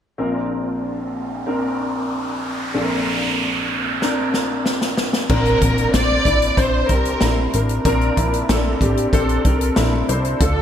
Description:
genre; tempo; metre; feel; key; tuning
piano-driven pop; 94 BPM; 4/4; straight; unclear; A4 = 440 Hz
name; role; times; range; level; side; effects
warm concert grand piano; accompaniment; 0.2-10.6 s; Bb1 to C5; -21 LUFS; left 1 dB; ensemble chorus
noise sweep and impact; sound effects; 0.8-7.9 s; none; -26 LUFS; right 2 dB; none
natural country drum kit; drums; 4.0-10.6 s; crash cymbal, hi-hat, kick drum, snare drum; -21 LUFS; equal; gated reverb
warm studio violin section; melody; 5.3-10.6 s; A4 to D5; -20 LUFS; right 1 dB; none
plucky analog bass; bass; 5.3-10.6 s; A1 to D2; -21 LUFS; equal; none
room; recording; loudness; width
moderate plate reverb, RT60 2.0 s, small room reverb; bright 1980s-style digital production; -17 LUFS; side -9 dB against mid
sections
0.2-5.3 A section; 5.3-10.6 B section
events
noise sweep 0.8-5.3; drum fill 4.0-5.3; impact 5.3-7.9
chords
0.2 Bbadd9

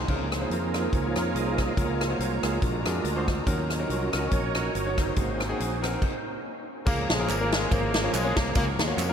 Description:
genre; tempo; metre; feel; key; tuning
uptempo gospel; 142 BPM; 4/4; swing 55% on 8ths; Db major; A4 = 441 Hz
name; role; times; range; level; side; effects
warm horn section; melody; 0.0, 6.9-9.1 s; F3 to Bb3; -32 LUFS; equal; ping-pong delay
bright tonewheel organ; sustained chords; 0.0-9.1 s; F3 to Db6; -31 LUFS; right 3 dB; fast rotary speaker, chorus vibrato
fingered electric bass; bass; 0.0-9.1 s; G1 to F2; -31 LUFS; equal; none
bright grand piano; accompaniment; 0.1-9.1 s; Ab2 to Db5; -32 LUFS; left 2 dB; none
warm studio string section; sustained chords; 0.1-6.0 s; C5 to Bb5; -39 LUFS; left 2 dB; none
swinging big-band drum kit; drums; 0.1-9.1 s; crash cymbal, hi-hat, kick drum, ride cymbal, rim click, snare drum; -28 LUFS; equal; none
tambourine and handclaps; percussion; 6.9-9.1 s; none; -40 LUFS; equal; none
room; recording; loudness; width
wet cathedral reverb, RT60 6.5 s; dreamy mix soaked in reverb; -24 LUFS; side -8 dB against mid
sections
0.1-6.9 A section; 6.9-9.1 B section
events
tonewheel organ solo 0.1-6.9; stop 6.0-6.9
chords
0.1 Db6; 1.8 Gbmaj7/Db; 2.6 Bb7b13; 3.5 Ebm7; 5.2 Ab7; 6.9 Db6; 8.6 Gbmaj7/Db

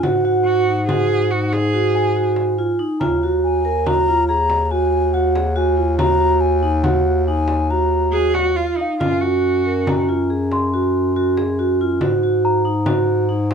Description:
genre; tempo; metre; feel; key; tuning
contemporary instrumental, chamber music in an uneven meter; 140 BPM; 7/4; straight; Eb dorian; A4 = 439 Hz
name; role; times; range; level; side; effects
baroque flute; melody; 0.0-8.1 s; Gb5 to Bb5; -21 LUFS; left 3 dB; none
vibraphone with medium mallets; arpeggios; 0.0-13.5 s; Eb4 to Bb4; -18 LUFS; right 3 dB; none
warm bass clarinet; bass; 0.0-13.5 s; Eb2 to Ab2; -21 LUFS; left 2 dB; none
frame drum; percussion; 0.0-13.5 s; none; -26 LUFS; equal; none
celesta; texture; 0.2-13.5 s; F5 to C6; -28 LUFS; left 2 dB; none
rich cello; second line; 0.4-2.4, 8.1-10.1 s; Eb4 to Ab4; -22 LUFS; right 2 dB; none
room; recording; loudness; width
light reverb; minimal, uncompressed stereo recording; -15 LUFS; side -6 dB against mid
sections
0.0-13.5 A section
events
none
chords
0.0 Ab5; 3.0 Ebm; 9.0 Gbmaj7; 12.0 Ab5

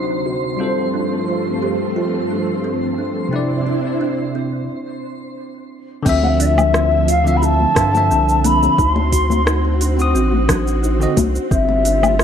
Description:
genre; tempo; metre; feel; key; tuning
sunset chillout; 88 BPM; 4/4; straight; unclear; A4 = 440 Hz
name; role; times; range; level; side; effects
bell-like tine electric piano; accompaniment; 0.0-11.2 s; C3 to Eb6; -23 LUFS; equal; auto-pan, tape echo
soft string machine; sustained chords; 0.0-12.2 s; D2 to E5; -24 LUFS; equal; ensemble chorus
kalimba; arpeggios; 0.0-12.2 s; C4 to G4; -24 LUFS; right 1 dB; low-pass filter, tape echo
twinkling granular texture; texture; 0.0-4.7 s; C5 to C6; -28 LUFS; right 2 dB; built-in reverb
mellow wooden flute; melody; 6.1-12.2 s; D5 to C6; -17 LUFS; left 2 dB; digital delay
round analog bass; bass; 6.1-12.2 s; G1 to G2; -18 LUFS; equal; none
electronic kick drum; drums; 6.1-11.7 s; none; -19 LUFS; equal; overdrive
smooth R&B drum kit; drums; 6.1-12.2 s; crash cymbal, hi-hat, rim click, shaker, woodblock; -23 LUFS; equal; overdrive
congas; percussion; 6.2-12.2 s; none; -23 LUFS; left 6 dB; none
room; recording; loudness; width
light reverb; none; -15 LUFS; side -8 dB against mid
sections
0.0-6.1 A section; 6.1-12.2 B section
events
break 4.7-6.1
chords
0.0 D7b9; 0.6 G9sus4; 3.3 Cadd9; 6.1 Dm9; 8.8 D7b9; 11.5 G7sus4

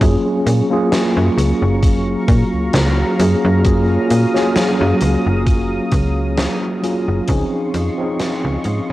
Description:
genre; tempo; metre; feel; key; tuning
vaporwave; 66 BPM; 4/4; swing 55% on 16ths; unclear; A4 = 440 Hz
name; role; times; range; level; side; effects
mellow tine electric piano; accompaniment; 0.0-8.9 s; F3 to Ab4; -18 LUFS; equal; medium stereo tremolo, wide subtle chorus, cassette tape, tape echo
lush unison pad; sustained chords; 0.0-8.9 s; Gb3 to Eb6; -25 LUFS; right 1 dB; chorus, vintage 12-bit sampler grit, cassette tape
slap-like FM bass; bass; 0.0-8.9 s; Gb1 to Bb2; -17 LUFS; equal; none
big rock drum kit; drums; 0.0-8.8 s; hi-hat, snare drum; -23 LUFS; equal; cassette tape
electronic kick drum; drums; 0.0-7.5 s; none; -16 LUFS; equal; cassette tape
room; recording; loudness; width
light reverb, small room ambience; home recording on cassette; -14 LUFS; side -16 dB against mid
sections
0.0-8.9 A section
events
fade-out 4.9-8.9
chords
0.0 Gbmaj7; 7.3 Dbmaj9

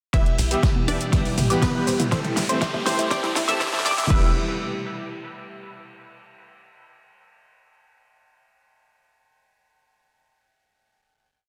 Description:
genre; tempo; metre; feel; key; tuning
progressive house; 121 BPM; 4/4; straight; E minor; A4 = 440 Hz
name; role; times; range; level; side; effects
unison pluck; melody; 0.1-4.3 s; B3 to E5; -34 LUFS; equal; phaser, dub echo
airy breathy pad; sustained chords; 0.3-4.3 s; B2 to G4; -33 LUFS; equal; chorus, sidechain pumping
tight sequenced synth; arpeggios; 0.1-4.3 s; E4 to E5; -31 LUFS; equal; chorus, phaser, sidechain pumping, dub echo
soft supersaw; stabs; 0.1-4.3 s; A2 to E5; -30 LUFS; equal; sidechain pumping, dub echo
tight sequencer bass; bass; 0.1-4.3 s; E1 to C2; -32 LUFS; equal; none
deep house drum kit; drums; 0.1-4.2 s; crash cymbal, hi-hat, shaker, snare drum; -30 LUFS; equal; overdrive, sidechain pumping on hats, sidechain pumping on perc, sidechain pumping on cymbals
electronic kick drum; drums; 0.1-4.2 s; none; -24 LUFS; equal; overdrive
soft brush drum kit; drums; 0.1-4.1 s; hi-hat, ride cymbal, snare drum; -41 LUFS; equal; sidechain pumping on cymbals, high-pass filter on cymbals, sidechain pumping on hats, high-pass filter on hats, high-pass filter on snare, high-pass filter on room
riser; sound effects; 0.9-4.1 s; none; -36 LUFS; equal; none
electronic congas and toms; percussion; 0.8-4.1 s; none; -30 LUFS; equal; overdrive, sidechain pumping on perc, sidechain pumping on toms
room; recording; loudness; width
moderate lush hall reverb, RT60 1.8 s, digital ambience; dense, heavily limited modern master, high-pass filter; -22 LUFS; mono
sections
0.1-4.1 build; 4.1-6.1 final chord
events
build-up 0.1-4.1; drum fill 0.1-4.1; filter sweep on synth arpeggio sound 0.1-4.1; filter sweep 0.1-4.1; riser 0.9-4.1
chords
0.1 Em; 2.1 Am7; 4.1 Em

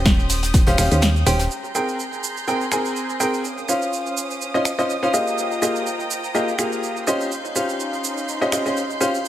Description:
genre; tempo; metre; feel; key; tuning
piano house; 124 BPM; 4/4; swing 55% on 16ths; Ab major; A4 = 437 Hz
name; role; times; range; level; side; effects
dark studio string section; sustained chords; 0.0-9.3 s; Db4 to G6; -29 LUFS; right 1 dB; sidechain pumping
clear upright piano; riff; 0.0-9.2 s; Bb3 to Ab5; -22 LUFS; equal; sidechain pumping, tape echo
solid FM bass; bass; 0.0-1.5 s; Eb1 to Eb2; -20 LUFS; equal; sidechain pumping
electronic kick drum; drums; 0.1-0.6 s; none; -16 LUFS; equal; none
house drum kit; drums; 0.1-9.3 s; cabasa, finger snaps, hi-hat, snare drum; -26 LUFS; right 2 dB; none
snare drum and shaker; drums; 0.1-1.5 s; none; -30 LUFS; left 1 dB; sidechain pumping on hats, high-pass filter on hats, high-pass filter on snare, sidechain pumping on perc, high-pass filter on perc, high-pass filter on room
room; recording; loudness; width
light reverb, studio reverb; none; -19 LUFS; side -12 dB against mid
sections
0.0-1.5 A section; 1.5-9.3 B section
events
kick drops out 1.0-1.5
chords
0.0 Eb13; 1.5 Abmaj9; 3.4 Dbmaj9; 5.1 Fm11; 7.1 Eb13

